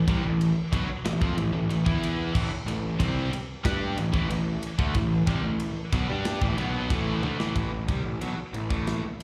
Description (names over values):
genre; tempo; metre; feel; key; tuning
hard rock; 92 BPM; 4/4; straight; A minor; A4 = 440 Hz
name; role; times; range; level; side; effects
tight distorted guitar; riff; 0.0-9.1 s; A2 to G4; -39 LUFS; equal; none
fuzz picked electric bass; bass; 0.0-9.1 s; A1 to G2; -32 LUFS; equal; overdrive
cranked stack guitar; riff; 0.1-9.1 s; A2 to G4; -36 LUFS; equal; overdrive, slapback echo
tight distorted guitar; riff; 0.1-7.5 s; A2 to G4; -33 LUFS; equal; distortion, slapback echo
tight metal drum kit; drums; 0.1-9.2 s; crash cymbal, kick drum, ride cymbal, snare drum, toms; -32 LUFS; equal; none
room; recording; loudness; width
small room ambience; live gig heard through the venue's PA, club reverb; -27 LUFS; mono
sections
0.0-7.6 A section; 7.6-9.2 B section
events
drum fill 7.2-7.6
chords
0.0 Am